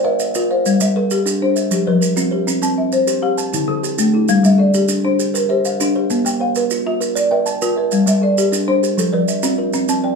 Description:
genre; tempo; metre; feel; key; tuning
southern african traditional, mbira-style interlocking cycle; 132 BPM (dotted quarters); 12/8; straight; G equiheptatonic; A4 = 442 Hz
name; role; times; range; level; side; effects
folk marimba with soft mallets; arpeggios; 0.0-10.2 s; D3 to A5-29c; -17 LUFS; left 3 dB; none
kalimba; arpeggios; 0.0-10.2 s; D3 to A5-29c; -19 LUFS; right 3 dB; none
maracas; percussion; 0.2-10.0 s; none; -24 LUFS; right 6 dB; none
room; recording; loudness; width
wet studio reverb, RT60 0.5 s; small room ambience; -14 LUFS; side -4 dB against mid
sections
0.0-4.3 A section; 4.3-10.2 B section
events
none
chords
0.0 Bb; 0.7 Gm; 1.6 F5; 2.5 C; 3.4 Dm; 4.3 Gm; 6.1 Bb; 7.9 Gm; 8.8 F

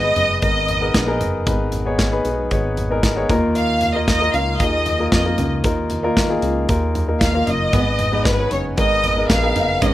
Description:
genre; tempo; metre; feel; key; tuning
piano-driven pop; 115 BPM; 4/4; straight; unclear; A4 = 438 Hz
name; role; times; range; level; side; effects
rich studio violin section; melody; 0.0-9.9 s; Cb5 to F5; -20 LUFS; equal; none
warm concert grand piano; accompaniment; 0.0-9.9 s; Ab2 to Db5; -22 LUFS; left 2 dB; none
chorused synth bass; bass; 0.0-9.9 s; Gb1 to F2; -22 LUFS; equal; none
modern studio drum kit; drums; 0.2-9.9 s; hi-hat, kick drum, snare drum, toms; -21 LUFS; equal; none
picked steel-string acoustic guitar; riff; 7.7-9.9 s; Cb4 to Eb4; -28 LUFS; right 5 dB; none
room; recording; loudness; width
light reverb; rough home demo mix; -16 LUFS; side -14 dB against mid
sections
0.0-9.9 A section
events
none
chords
0.0 Abm; 3.3 Ebsus2; 7.7 Abm

